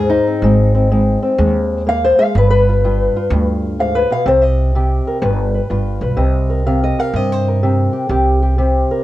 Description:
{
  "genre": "acoustic country blues, solo or duo",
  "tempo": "125 BPM",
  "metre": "4/4",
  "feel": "swing 65% on 8ths",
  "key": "C minor",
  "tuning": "A4 = 441 Hz",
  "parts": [
    { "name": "fingerpicked old ladder-braced acoustic guitar", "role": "melody", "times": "0.0-9.0 s", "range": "G2 to F5", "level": "-15 LUFS", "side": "left 1 dB", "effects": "none" },
    { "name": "upright bass", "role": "bass", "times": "0.0-8.8 s", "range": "G1 to G2", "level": "-16 LUFS", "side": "right 1 dB", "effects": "none" }
  ],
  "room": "light reverb",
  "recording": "worn, warbling old tape, cassette tape, warbly pitch drift",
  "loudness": "-13 LUFS",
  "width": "side -15 dB against mid",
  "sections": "0.0-6.2 A section; 6.2-9.0 B section",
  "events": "steel-string acoustic guitar solo 0.0-6.2",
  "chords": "0.0 Ab; 2.3 G7; 4.3 Cm; 5.2 G7; 6.2 Cm7",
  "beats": "| 0.42 0.90 1.38 1.86 | 2.34 2.82 3.30 3.78 | 4.26 4.74 5.21 5.69 | 6.17 6.65 7.13 7.62 | 8.10 8.58"
}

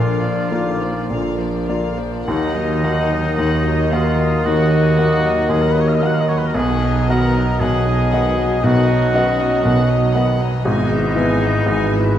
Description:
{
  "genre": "classical",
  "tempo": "51-61 BPM",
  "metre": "4/4",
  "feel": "rubato",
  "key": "Eb minor",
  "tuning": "A4 = 440 Hz",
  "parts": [
    { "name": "clear baby grand piano", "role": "melody", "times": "0.0-12.2 s", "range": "G#1 to Eb5", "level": "-20 LUFS", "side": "left 1 dB", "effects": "none" },
    { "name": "warm chamber violin section", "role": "melody", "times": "0.0-12.2 s", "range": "D5 to G#5", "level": "-31 LUFS", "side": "left 4 dB", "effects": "none" },
    { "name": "mellow clarinet", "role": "second line", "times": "0.0-12.2 s", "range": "Bb3 to F4", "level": "-28 LUFS", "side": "right 1 dB", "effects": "none" },
    { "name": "mellow concert flute", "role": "second line", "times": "0.0-12.2 s", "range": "Eb5 to Gb6", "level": "-29 LUFS", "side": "left 1 dB", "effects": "none" },
    { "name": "warm chamber violin section", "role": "second line", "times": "0.0-12.2 s", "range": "Bb3 to E4", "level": "-30 LUFS", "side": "left 3 dB", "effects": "none" },
    { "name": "warm oboe", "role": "second line", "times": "0.0-12.2 s", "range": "Eb4 to Gb5", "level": "-26 LUFS", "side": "right 1 dB", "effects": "none" },
    { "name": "warm chamber viola section", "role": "accompaniment", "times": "0.0-12.2 s", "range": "D3 to G#3", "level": "-28 LUFS", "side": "left 3 dB", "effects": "none" },
    { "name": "warm French horn section", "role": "sustained chords", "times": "0.0-12.2 s", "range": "E3 to Bb4", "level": "-25 LUFS", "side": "left 4 dB", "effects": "none" },
    { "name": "mellow trumpet section", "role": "stabs", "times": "0.0-12.2 s", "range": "B4 to Eb5", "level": "-26 LUFS", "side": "equal", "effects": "none" },
    { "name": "dark chamber cello section", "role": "bass", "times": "0.0-12.2 s", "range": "G#2 to Eb3", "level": "-26 LUFS", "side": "right 2 dB", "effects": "none" },
    { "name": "mellow tuba", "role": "bass", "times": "0.0-12.2 s", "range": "G#1 to Eb2", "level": "-25 LUFS", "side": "right 3 dB", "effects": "none" },
    { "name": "rich studio double bass section", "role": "bass", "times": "0.0-12.2 s", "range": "G#1 to Eb2", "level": "-24 LUFS", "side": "right 3 dB", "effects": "none" }
  ],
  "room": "wet scoring stage reverb, RT60 1.9 s",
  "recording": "dark, warm production",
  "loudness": "-15 LUFS",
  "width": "side -10 dB against mid",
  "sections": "0.0-12.2 A section",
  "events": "none",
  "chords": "0.0 Bb; 2.3 Ebm; 6.5 B; 10.6 E/G#",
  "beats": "1.10 | 2.26 3.37 4.44 5.48 | 6.54 7.59 8.62 9.64 | 10.64 11.66"
}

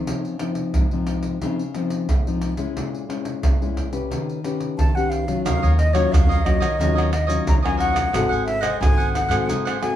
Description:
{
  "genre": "samba and choro",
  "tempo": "89 BPM",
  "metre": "4/4",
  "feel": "straight",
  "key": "Eb minor",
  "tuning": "A4 = 438 Hz",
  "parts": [
    { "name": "nylon-string guitar", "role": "accompaniment", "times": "0.0-10.0 s", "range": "Ab2 to Cb5", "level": "-25 LUFS", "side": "left 4 dB", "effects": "none" },
    { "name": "surdo, pandeiro, maracas and tamborim", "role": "percussion", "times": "0.1-10.0 s", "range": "none", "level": "-22 LUFS", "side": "right 1 dB", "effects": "none" },
    { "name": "breathy concert flute", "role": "melody", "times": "4.8-10.0 s", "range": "Db5 to Bb5", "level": "-24 LUFS", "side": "left 1 dB", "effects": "none" },
    { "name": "cavaquinho", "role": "accompaniment", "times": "5.5-9.9 s", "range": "Eb4 to Gb5", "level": "-28 LUFS", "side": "right 5 dB", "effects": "none" },
    { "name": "upright bass", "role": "bass", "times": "5.5-10.0 s", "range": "Ab1 to Eb3", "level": "-23 LUFS", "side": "equal", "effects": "none" }
  ],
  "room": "moderate studio reverb, RT60 0.6 s",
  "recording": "small room ambience",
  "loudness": "-19 LUFS",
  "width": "side -11 dB against mid",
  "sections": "0.0-5.5 A section; 5.5-10.0 B section",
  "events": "none",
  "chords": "0.1 Dbmaj9; 2.8 Bbm7b5; 4.1 Eb7alt; 5.5 Ebm9; 8.1 Ab7b9",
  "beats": "| 0.07 0.74 1.42 2.09 | 2.77 3.44 4.11 4.79 | 5.46 6.13 6.80 7.48 | 8.15 8.82 9.49"
}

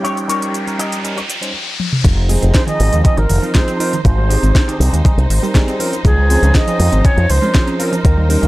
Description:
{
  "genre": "nu-disco, nu disco",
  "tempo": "120 BPM",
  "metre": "4/4",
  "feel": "straight",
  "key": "F minor",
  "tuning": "A4 = 440 Hz",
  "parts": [
    { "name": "mellow silver concert flute", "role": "melody", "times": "0.0-8.5 s", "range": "G4 to Eb5", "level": "-21 LUFS", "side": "right 2 dB", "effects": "none" },
    { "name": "bell-like tine electric piano", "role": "accompaniment", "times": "0.0-8.5 s", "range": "F3 to Db5", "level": "-22 LUFS", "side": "equal", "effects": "phaser, sidechain pumping" },
    { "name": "rich studio string section", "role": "sustained chords", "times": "0.0-8.5 s", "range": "F3 to G5", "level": "-27 LUFS", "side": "equal", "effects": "sidechain pumping" },
    { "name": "electric guitar with an envelope filter", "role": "riff", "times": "0.0-1.3 s", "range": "Eb4 to Eb5", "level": "-22 LUFS", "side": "left 4 dB", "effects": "analog chorus, analog delay" },
    { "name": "house drum kit", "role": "drums", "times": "0.0-8.5 s", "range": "crash cymbal, hi-hat, shaker, snare drum, toms", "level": "-22 LUFS", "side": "equal", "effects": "small room ambience" },
    { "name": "riser", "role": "sound effects", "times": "0.0-2.0 s", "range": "none", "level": "-24 LUFS", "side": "left 1 dB", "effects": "none" },
    { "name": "wide unison pluck", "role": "arpeggios", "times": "2.0-8.5 s", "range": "Eb3 to F4", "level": "-24 LUFS", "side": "right 3 dB", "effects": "sidechain pumping, analog delay" },
    { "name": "fingered electric bass with an envelope filter", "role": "bass", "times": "2.0-8.5 s", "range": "F1 to F2", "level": "-13 LUFS", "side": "equal", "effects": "none" },
    { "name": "electronic kick drum", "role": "drums", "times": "2.0-8.1 s", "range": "none", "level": "-12 LUFS", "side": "equal", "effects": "overdrive, small room ambience" }
  ],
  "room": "digital ambience",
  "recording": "dry, gritty hardware recording",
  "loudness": "-12 LUFS",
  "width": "side -18 dB against mid",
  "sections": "0.0-2.0 A section; 2.0-8.5 B section",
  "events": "riser 0.0-2.0; filter sweep on clean electric guitar 0.0-2.0; drum fill 1.8; drop 2.0-8.5",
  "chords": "0.0 Eb7; 2.0 Fm7; 4.0 Abmaj7; 5.8 Dbmaj7",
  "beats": "| 0.04 0.55 1.04 1.54 | 2.04 2.54 3.04 3.54 | 4.04 4.54 5.04 5.54 | 6.04 6.54 7.04 7.54 | 8.04"
}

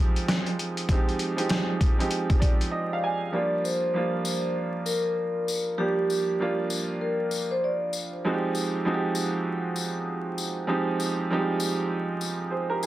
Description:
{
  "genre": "hip hop, boom-bap hip-hop",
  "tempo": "98 BPM",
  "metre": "4/4",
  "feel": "swing 60% on 16ths",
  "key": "G phrygian",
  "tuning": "A4 = 439 Hz",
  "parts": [
    { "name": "warm upright piano", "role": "accompaniment", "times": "0.0-12.9 s", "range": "F3 to Ab5", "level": "-27 LUFS", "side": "right 2 dB", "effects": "cassette tape, high-pass filter, low-pass filter" },
    { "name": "trip hop sampler-style drum kit", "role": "drums", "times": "0.2-2.7 s", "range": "hi-hat, kick drum, rim click, snare drum", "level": "-23 LUFS", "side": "equal", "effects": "none" },
    { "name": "vibraphone with soft mallets", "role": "melody", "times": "3.3-7.9 s", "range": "G4 to D5", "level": "-28 LUFS", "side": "equal", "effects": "high-pass filter, low-pass filter, digital delay" },
    { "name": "tambourine", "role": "percussion", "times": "3.6-12.9 s", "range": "none", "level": "-34 LUFS", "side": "left 4 dB", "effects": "none" }
  ],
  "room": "light reverb",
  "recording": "dense, heavily limited modern master, vinyl crackle",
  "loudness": "-24 LUFS",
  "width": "side -14 dB against mid",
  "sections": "0.0-3.3 A section; 3.3-12.9 B section",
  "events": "upright piano fill 2.1-3.3; break 2.7-3.3",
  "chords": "0.0 Fm7; 3.3 Gm7; 8.2 Fm7",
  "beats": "0.28 | 0.89 1.50 2.11 2.73 | 3.34 3.95 4.56 5.17 | 5.79 6.40 7.01 7.62 | 8.24 8.85 9.46 10.07 | 10.69 11.30 11.91 12.52"
}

